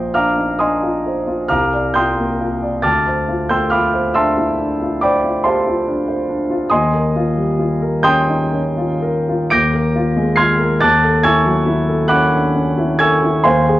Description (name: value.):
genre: classical, impressionist solo piano.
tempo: 38-49 BPM (dotted quarters).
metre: 9/8.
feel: rubato.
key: unclear.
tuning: A4 = 440 Hz.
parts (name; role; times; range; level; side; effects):
warm concert grand piano; solo; 0.0-13.8 s; Bb1 to D7; -14 LUFS; equal; none.
room: moderate recital hall reverb, RT60 1.8 s.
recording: worn, warbling old tape, cassette tape, warbly pitch drift.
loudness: -14 LUFS.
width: side -15 dB against mid.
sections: 0.0-13.8 A section.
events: none.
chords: 0.0 Bb69; 1.5 Cm11; 2.8 Dm7; 6.7 Eb9; 9.5 Bb9/Eb; 10.8 Dmaj9/Eb.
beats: 0.14 1.50 | 2.84 4.15 5.46 | 6.71 8.03 9.52 | 10.82 12.11 13.45.